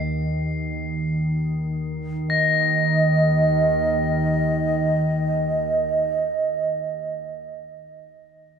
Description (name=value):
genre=world meditative, free-time meditation music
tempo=free time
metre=none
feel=none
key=unclear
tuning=A4 = 440 Hz
part: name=glassy FM pad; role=drone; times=0.0-6.8 s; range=Eb2 to Eb3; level=-23 LUFS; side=equal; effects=ensemble chorus, built-in reverb
part: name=crotales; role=texture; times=0.0-6.8 s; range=Bb6 to C7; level=-27 LUFS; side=left 8 dB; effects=stereo widening
part: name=mellow xiao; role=melody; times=2.3-6.8 s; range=Eb5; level=-23 LUFS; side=right 3 dB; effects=tape echo
room=wet echo chamber reverb, RT60 1.3 s, small room ambience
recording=echo-heavy mix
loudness=-19 LUFS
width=side -7 dB against mid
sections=0.0-2.3 A section; 2.3-6.9 B section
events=none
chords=none